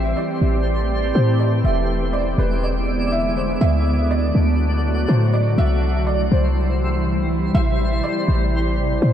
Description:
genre	hip hop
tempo	122 BPM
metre	4/4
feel	half-time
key	A dorian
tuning	A4 = 440 Hz
part	felt-muted upright piano	melody	0.0-9.1 s	B4 to E5	-26 LUFS	right 2 dB	lush chorus, digital delay
part	shimmering ambient pad	sustained chords	0.0-9.1 s	C3 to G4	-23 LUFS	equal	chorus, built-in reverb
part	clean 808-style bass	bass	0.0-9.1 s	E1 to A2	-19 LUFS	equal	none
part	twinkling granular texture	texture	0.0-9.1 s	G3 to D5	-28 LUFS	left 1 dB	built-in reverb, lush chorus
room	moderate lush hall reverb, RT60 1.8 s, digital ambience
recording	bright 1980s-style digital production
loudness	-17 LUFS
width	side -10 dB against mid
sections	0.0-9.1 A section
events	none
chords	0.0 Am7; 1.6 E7; 3.6 D; 5.6 C; 7.5 Am7

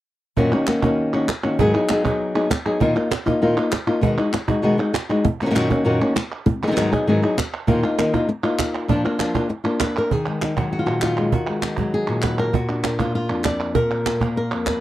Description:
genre	flamenco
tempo	197 BPM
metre	4/4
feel	straight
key	Bb phrygian dominant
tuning	A4 = 440 Hz
part	flamenco guitar	melody	0.4-14.8 s	F2 to D5	-19 LUFS	left 1 dB	none
part	cajon	percussion	0.4-14.8 s	none	-24 LUFS	right 5 dB	none
part	palmas hand claps	percussion	0.5-14.8 s	none	-30 LUFS	right 2 dB	none
room	moderate booth ambience, RT60 0.2 s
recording	dry, close 1970s-style studio recording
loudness	-18 LUFS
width	side -14 dB against mid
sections	0.4-10.1 A section; 10.1-14.8 B section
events	none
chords	0.4 Gb6; 1.6 Abm7; 2.8 Bbsus4; 4.0 B6; 5.3 Gb6; 6.5 Abm7; 7.7 Bbsus4; 8.9 Bb; 10.1 Ebm; 12.5 Bb

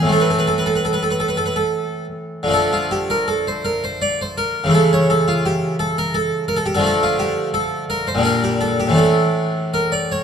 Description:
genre	classical, baroque-style suite movement for harpsichord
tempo	73-87 BPM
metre	3/4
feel	rubato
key	D minor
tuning	A4 = 437 Hz
part	harpsichord	solo	0.0-10.2 s	A2 to D5	-16 LUFS	equal	none
room	moderate concert hall reverb, RT60 1.8 s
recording	close, detailed microphones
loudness	-16 LUFS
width	side -7 dB against mid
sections	0.0-2.5 A section; 2.5-10.2 A section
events	none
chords	0.1 Am; 2.5 Dm; 4.7 A/C#; 6.8 Dm; 8.2 Gm/Bb; 9.0 Asus4

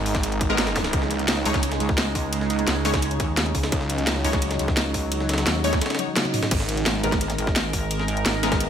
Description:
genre	dark technical drum and bass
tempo	172 BPM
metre	4/4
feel	straight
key	unclear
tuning	A4 = 442 Hz
part	sweeping resonant pad	sustained chords	0.0-8.7 s	C#3 to A#4	-28 LUFS	right 2 dB	chorus, sidechain pumping
part	snarling distorted saw bass	bass	0.0-1.4, 3.7-4.2, 6.5-7.0 s	G#1 to C#2	-27 LUFS	equal	distortion, overdrive, sidechain pumping
part	breakbeat sampler-style drum kit	drums	0.1-8.7 s	ride cymbal, snare drum	-31 LUFS	right 1 dB	high-pass filter on cymbals, small room reverb, high-pass filter on snare
part	drum and bass drum kit	drums	0.1-8.7 s	crash cymbal, hi-hat, snare drum, toms	-26 LUFS	equal	overdrive, small room reverb
part	electronic kick drum	drums	0.1-8.6 s	none	-26 LUFS	equal	overdrive, small room reverb
part	orchestra-hit-like synth stab	stabs	0.5-8.5 s	G#3 to C#5	-28 LUFS	left 1 dB	built-in reverb, ping-pong delay
part	zap	sound effects	0.8 s	none	-33 LUFS	equal	none
part	pulsing pluck wobble bass	bass	1.5-8.7 s	G#1 to D#2	-27 LUFS	equal	chorus
room	light reverb, digital ambience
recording	none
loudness	-20 LUFS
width	side -8 dB against mid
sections	0.0-6.5 A section; 6.5-8.7 A section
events	drop 0.0-6.5, 6.5-8.7; drum fill 6.0-6.5; band accent 6.2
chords	0.0 G#madd9; 0.9 C#sus2; 6.5 G#madd9

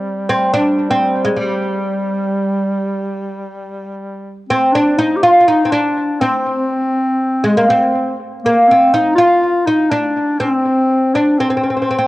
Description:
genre	Arabic maqam ensemble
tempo	122 BPM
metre	4/4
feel	straight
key	G maqam kurd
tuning	A4 = 439 Hz
part	warm duduk	drone	0.0-4.5 s	G3	-22 LUFS	right 1 dB	stereo widening, cassette tape, plate reverb
part	oud	melody	0.3-12.1 s	G3 to F4	-14 LUFS	equal	cassette tape, plate reverb, analog delay
part	warm clarinet	second line	4.5-12.1 s	Ab3 to G4	-16 LUFS	left 1 dB	cassette tape, plate reverb
room	moderate studio reverb, RT60 0.6 s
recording	home recording on cassette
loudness	-12 LUFS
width	side -18 dB against mid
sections	0.0-4.5 A section; 4.5-12.1 B section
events	none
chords	none

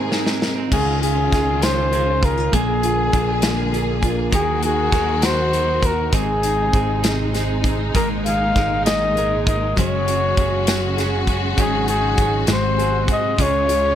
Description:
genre	six-eight pop ballad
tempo	66 BPM (dotted quarters)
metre	6/8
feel	straight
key	Db major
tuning	A4 = 441 Hz
part	warm flugelhorn	melody	0.0-13.9 s	Ab4 to F5	-21 LUFS	left 2 dB	none
part	nylon-string guitar	accompaniment	0.0-13.9 s	Ab2 to Bb4	-26 LUFS	equal	double-tracked left and right
part	warm studio string section	sustained chords	0.0-13.9 s	Bb2 to Ab4	-26 LUFS	left 1 dB	none
part	direct-recorded clean electric guitar	arpeggios	0.0-13.9 s	Ab2 to Bb4	-28 LUFS	right 8 dB	none
part	modern studio drum kit	drums	0.1-13.8 s	crash cymbal, hi-hat, kick drum, snare drum	-22 LUFS	equal	none
part	fingered electric bass	bass	0.7-13.9 s	Gb1 to Eb2	-24 LUFS	equal	none
room	light reverb, small room ambience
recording	none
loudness	-16 LUFS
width	side -10 dB against mid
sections	0.7-13.9 A section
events	break 0.0-0.7; drum fill 0.0-0.7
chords	0.0 Abadd9; 0.7 Dbadd9; 2.5 Bb7; 4.3 Ebm; 6.1 Ab; 8.0 Absus2; 9.8 Gbsus2; 11.6 Ab7sus4; 12.5 Ab7; 13.4 Db

